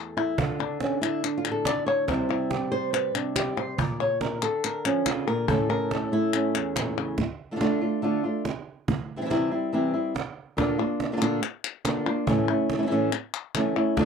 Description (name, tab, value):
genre	flamenco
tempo	141 BPM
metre	4/4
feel	straight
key	unclear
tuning	A4 = 440 Hz
part	flamenco guitar	melody	0.0-14.1 s	E2 to D5	-24 LUFS	equal	none
part	palmas hand claps	percussion	0.2-7.2, 10.6-14.1 s	none	-31 LUFS	left 16 dB	none
part	cajon	percussion	0.4-14.1 s	none	-31 LUFS	right 5 dB	none
room	light reverb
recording	dry, close 1970s-style studio recording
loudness	-24 LUFS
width	side -6 dB against mid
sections	0.0-7.2 A section; 7.2-14.0 B section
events	nylon-string guitar solo 0.0-7.2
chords	0.4 D5; 2.1 C; 3.8 Bb; 5.5 A; 7.2 Dm; 8.9 C; 10.6 Bb; 12.3 A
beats	| 0.39 0.81 1.24 1.66 | 2.09 2.51 2.94 3.36 | 3.79 4.21 4.64 5.06 | 5.49 5.91 6.33 6.76 | 7.18 7.61 8.03 8.46 | 8.88 9.31 9.73 10.16 | 10.58 11.01 11.43 11.86 | 12.28 12.70 13.13 13.55 | 13.97